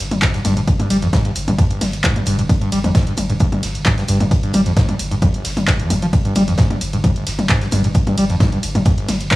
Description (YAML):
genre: driving peak-time techno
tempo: 132 BPM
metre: 4/4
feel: straight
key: unclear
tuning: A4 = 441 Hz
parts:
  - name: saturated sub bass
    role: bass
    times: 0.0-9.3 s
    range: G1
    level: -25 LUFS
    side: equal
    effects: overdrive, sidechain pumping, low-pass filter
  - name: impact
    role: sound effects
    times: 0.1-0.7 s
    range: none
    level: barely audible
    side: none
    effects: none
  - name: punchy analog drum machine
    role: drums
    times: 0.1-9.4 s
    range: handclaps, hi-hat, ride cymbal, toms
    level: -21 LUFS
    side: equal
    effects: sidechain pumping on hats, sidechain pumping on cymbals, sidechain pumping on toms
  - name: screaming distorted acid line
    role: riff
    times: 0.2-9.4 s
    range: G1 to G3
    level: -19 LUFS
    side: equal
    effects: distortion, wide subtle chorus, sidechain pumping, analog delay
  - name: electronic kick drum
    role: drums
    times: 0.2-9.4 s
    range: none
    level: -16 LUFS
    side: equal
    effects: none
  - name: oversized low-tuned drum kit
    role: drums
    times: 0.2-9.4 s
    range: hi-hat, snare drum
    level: -32 LUFS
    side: left 1 dB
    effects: sidechain pumping on hats, high-pass filter on hats, high-pass filter on snare, high-pass filter on room
room: light reverb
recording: small room ambience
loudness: -14 LUFS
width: side -18 dB against mid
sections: 0.0-9.4 A section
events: impact 0.0-0.7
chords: none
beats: 0.22 | 0.68 1.13 1.58 2.04 | 2.49 2.95 3.40 3.86 | 4.31 4.77 5.22 5.67 | 6.13 6.58 7.04 7.49 | 7.95 8.40 8.86 9.31